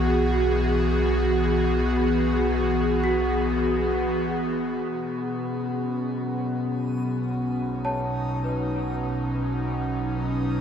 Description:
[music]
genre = ambient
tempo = 50 BPM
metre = 4/4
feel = straight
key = B mixolydian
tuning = A4 = 440 Hz
[part]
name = airy breathy pad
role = sustained chords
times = 0.0-10.6 s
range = B2 to G#4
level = -24 LUFS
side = equal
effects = chorus
[part]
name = deep rumbling drone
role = bass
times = 0.0-10.6 s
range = B1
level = -29 LUFS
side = equal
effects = built-in reverb
[part]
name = pedal harmonium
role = drone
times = 0.0-10.6 s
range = B3 to F#4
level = -34 LUFS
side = right 3 dB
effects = none
[part]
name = worn celesta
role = arpeggios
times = 3.0-10.6 s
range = F#4 to A5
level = -32 LUFS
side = equal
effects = tape echo
[part]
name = backwards swelling texture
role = texture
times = 6.8-10.6 s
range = D#6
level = -49 LUFS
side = right 4 dB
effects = built-in reverb
[sound]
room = wet huge ambient reverb, RT60 7.4 s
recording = dreamy mix soaked in reverb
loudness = -22 LUFS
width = side -8 dB against mid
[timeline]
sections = 0.0-4.9 A section; 4.9-10.6 B section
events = fade-in on synth texture 4.9-10.6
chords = 0.0 Eadd9/B; 4.9 B7

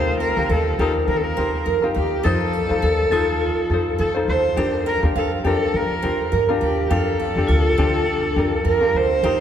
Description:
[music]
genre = acoustic pop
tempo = 103 BPM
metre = 4/4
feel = swing 55% on 16ths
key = Bb major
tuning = A4 = 440 Hz
[part]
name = clear cello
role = melody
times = 0.0-9.4 s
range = G4 to C5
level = -22 LUFS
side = equal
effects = none
[part]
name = ukulele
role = accompaniment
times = 0.0-9.4 s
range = D4 to C5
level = -24 LUFS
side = left 3 dB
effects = none
[part]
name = picked steel-string acoustic guitar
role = arpeggios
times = 0.0-9.4 s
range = A4 to G5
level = -27 LUFS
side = right 6 dB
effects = none
[part]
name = upright bass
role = bass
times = 0.0-9.4 s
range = D2 to F3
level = -23 LUFS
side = equal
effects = none
[part]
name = vibraphone with hard mallets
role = second line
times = 2.8-3.8, 7.5-8.5 s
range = D4 to A4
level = -30 LUFS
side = right 1 dB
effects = none
[sound]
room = wet cathedral reverb, RT60 5.9 s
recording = recorded in a church or concert hall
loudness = -17 LUFS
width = side -9 dB against mid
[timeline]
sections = 0.0-9.4 A section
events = none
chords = 0.0 Ebadd9; 2.2 F7; 4.6 Bb6

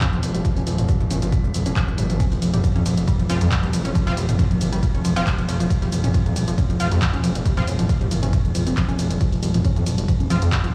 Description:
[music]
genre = driving peak-time techno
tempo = 137 BPM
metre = 4/4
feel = straight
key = unclear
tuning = A4 = 438 Hz
[part]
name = tight sequenced synth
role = riff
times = 0.0-10.7 s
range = F3 to Db4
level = -30 LUFS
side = equal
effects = chorus, overdrive, sidechain pumping, dub echo
[part]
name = metallic inharmonic drone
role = drone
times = 0.0-10.7 s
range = F3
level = -30 LUFS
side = equal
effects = chorus, built-in reverb, sidechain pumping
[part]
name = electronic kick drum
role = drums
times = 0.0-10.6 s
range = none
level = -24 LUFS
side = equal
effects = none
[part]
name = punchy analog drum machine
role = drums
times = 0.0-10.7 s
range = handclaps, hi-hat, ride cymbal, shaker, toms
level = -30 LUFS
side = equal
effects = none
[part]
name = gritty driven synth bass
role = bass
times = 0.1-10.7 s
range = Eb1 to F2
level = -25 LUFS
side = equal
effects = tube saturation, sidechain pumping
[part]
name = sync-sweep polysynth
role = stabs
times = 3.3-7.6, 10.3-10.4 s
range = F3 to F4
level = -33 LUFS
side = equal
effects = chorus, sidechain pumping, digital delay
[sound]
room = light reverb, digital ambience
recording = played on a big sound system in a bare room, large studio reverb, studio ambience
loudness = -21 LUFS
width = mono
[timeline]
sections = 0.0-10.7 A section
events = none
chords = 0.0 F5

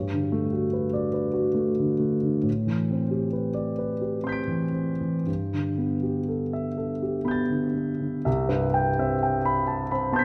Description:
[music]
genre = classical, impressionist solo piano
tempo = 38-49 BPM (dotted quarters)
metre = 6/8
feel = rubato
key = G major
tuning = A4 = 441 Hz
[part]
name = warm concert grand piano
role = solo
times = 0.0-10.2 s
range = C2 to D7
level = -26 LUFS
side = equal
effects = none
[sound]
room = moderate concert hall reverb, RT60 1.9 s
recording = none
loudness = -26 LUFS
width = mono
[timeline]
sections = 0.0-8.3 A section; 8.3-10.2 B section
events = none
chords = 0.0 Gmaj9; 2.5 Am11; 5.3 G69; 8.3 Cmaj7

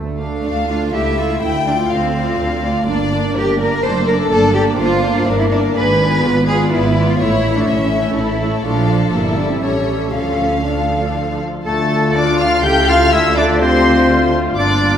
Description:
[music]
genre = quick classical-period movement for symphony orchestra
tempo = 124 BPM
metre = 3/4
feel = rubato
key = D minor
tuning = A4 = 439 Hz
[part]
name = rich chamber cello section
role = bass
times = 0.0-15.0 s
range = G2 to C5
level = -20 LUFS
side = right 1 dB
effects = none
[part]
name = warm chamber double bass section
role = bass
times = 0.0-15.0 s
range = F#1 to D2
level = -20 LUFS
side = right 2 dB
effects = none
[part]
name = rich chamber violin section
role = melody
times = 0.2-15.0 s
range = C#5 to G6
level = -26 LUFS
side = left 4 dB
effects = none
[part]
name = warm studio viola section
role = accompaniment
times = 0.2-15.0 s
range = F3 to A4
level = -20 LUFS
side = right 1 dB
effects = none
[part]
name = warm chamber violin section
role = second line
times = 0.4-15.0 s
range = G#4 to G5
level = -21 LUFS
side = left 4 dB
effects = none
[part]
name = clear clarinet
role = second line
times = 11.7-15.0 s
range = A3 to G4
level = -18 LUFS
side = left 1 dB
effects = none
[part]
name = clear oboe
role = second line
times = 11.7-15.0 s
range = A4 to G5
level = -20 LUFS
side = right 1 dB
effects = none
[part]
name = silver concert flute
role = second line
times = 11.7-15.0 s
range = A4 to G5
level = -22 LUFS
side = left 2 dB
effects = none
[part]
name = mellow French horn section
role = sustained chords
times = 11.7-15.0 s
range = A3 to F4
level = -19 LUFS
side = left 3 dB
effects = none
[sound]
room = wet scoring stage reverb, RT60 1.8 s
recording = none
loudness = -13 LUFS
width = side -9 dB against mid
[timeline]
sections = 0.0-11.7 A section; 11.7-15.0 A section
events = none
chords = 0.0 Dm; 0.9 A/C#; 1.4 Dm; 2.9 Gm; 3.8 D/F#; 4.3 Gm; 5.8 G#dim7; 7.2 A; 8.6 Bb; 9.1 Edim/G; 9.6 A7; 10.1 Dm; 12.6 A/C#; 13.1 Dm

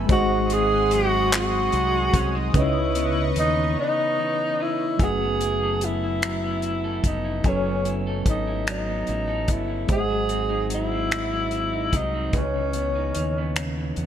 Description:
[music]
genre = slow six-eight R&B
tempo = 49 BPM (dotted quarters)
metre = 6/8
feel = straight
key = F# dorian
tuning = A4 = 440 Hz
[part]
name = electric guitar at the edge of break-up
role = second line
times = 0.0-14.1 s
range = G#2 to A4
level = -32 LUFS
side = right 4 dB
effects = none
[part]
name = mellow tine electric piano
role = accompaniment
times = 0.0-14.1 s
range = C#3 to G#5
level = -29 LUFS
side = equal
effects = fast stereo tremolo
[part]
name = chorused pulse-width pad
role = sustained chords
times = 0.0-5.0 s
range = G#4 to D#6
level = -32 LUFS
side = right 1 dB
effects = none
[part]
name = deep dub fingered electric bass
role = bass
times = 0.0-14.1 s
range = E#1 to E2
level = -28 LUFS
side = equal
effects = none
[part]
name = breathy tenor saxophone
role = melody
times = 0.1-13.9 s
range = C#4 to G#4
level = -25 LUFS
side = equal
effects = ping-pong delay
[part]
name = warm soul drum kit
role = drums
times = 0.1-14.1 s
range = finger snaps, handclaps, hi-hat, kick drum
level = -24 LUFS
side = equal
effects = none
[sound]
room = light reverb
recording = none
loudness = -21 LUFS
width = side -9 dB against mid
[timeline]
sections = 0.0-5.0 A section; 5.0-14.1 B section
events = break 3.8-5.0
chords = 0.1 G#7; 2.5 C#m9; 5.0 F#m11; 9.9 G#7; 12.3 C#m9

